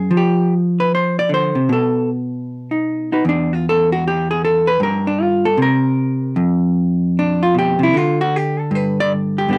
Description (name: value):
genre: solo jazz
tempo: 154 BPM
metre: 4/4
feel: swing 65% on 8ths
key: unclear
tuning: A4 = 443 Hz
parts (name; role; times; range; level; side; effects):
- vintage hollow-body jazz guitar; solo; 0.0-9.6 s; E2 to D5; -17 LUFS; equal; none
room: light reverb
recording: dark, warm production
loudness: -17 LUFS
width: mono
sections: 0.0-9.5 A section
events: hollow-body jazz guitar solo 0.0-9.5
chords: 0.1 Fsus2; 1.7 B7; 3.2 N.C.; 6.4 F5; 7.9 N.C.; 8.7 G5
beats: | 0.12 0.51 0.90 1.29 | 1.68 2.07 2.46 2.85 | 3.24 3.63 4.02 4.41 | 4.80 5.19 5.58 5.97 | 6.36 6.75 7.14 7.53 | 7.92 8.31 8.71 9.10 | 9.49